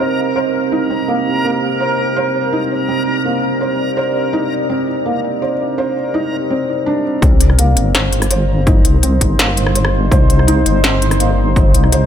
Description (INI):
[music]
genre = half-time drum and bass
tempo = 166 BPM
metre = 4/4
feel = half-time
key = C minor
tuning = A4 = 445 Hz
[part]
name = deep dark ambient pad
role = sustained chords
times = 0.0-12.1 s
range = G3 to Eb5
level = -20 LUFS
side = right 1 dB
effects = chorus, built-in reverb, sidechain pumping
[part]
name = felt-muted upright piano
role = arpeggios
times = 0.0-12.1 s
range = Bb3 to C5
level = -19 LUFS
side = right 1 dB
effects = low-pass filter, tape echo
[part]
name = backwards swelling texture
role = texture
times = 0.0-7.2 s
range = Bb4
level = -23 LUFS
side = right 1 dB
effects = built-in reverb
[part]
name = deep soft wobble bass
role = bass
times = 7.2-12.1 s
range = G1 to C2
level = -14 LUFS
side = equal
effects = chorus
[part]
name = electronic kick drum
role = drums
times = 7.2-11.6 s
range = none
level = -13 LUFS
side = equal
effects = none
[part]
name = industrial drum kit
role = drums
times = 7.2-12.0 s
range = hi-hat, rim click, snare drum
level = -17 LUFS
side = left 2 dB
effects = none
[sound]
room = light reverb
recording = none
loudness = -12 LUFS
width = side -9 dB against mid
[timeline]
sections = 0.0-7.2 A section; 7.2-12.1 B section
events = filter sweep on ambient pad 0.0-7.2; drop 7.2-12.1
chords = 0.0 Cm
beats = 0.36 0.72 1.08 | 1.44 1.80 2.16 2.52 | 2.89 3.25 3.61 3.97 | 4.33 4.69 5.05 5.42 | 5.78 6.14 6.50 6.86 | 7.22 7.58 7.95 8.31 | 8.67 9.03 9.39 9.75 | 10.12 10.48 10.84 11.20 | 11.56 11.92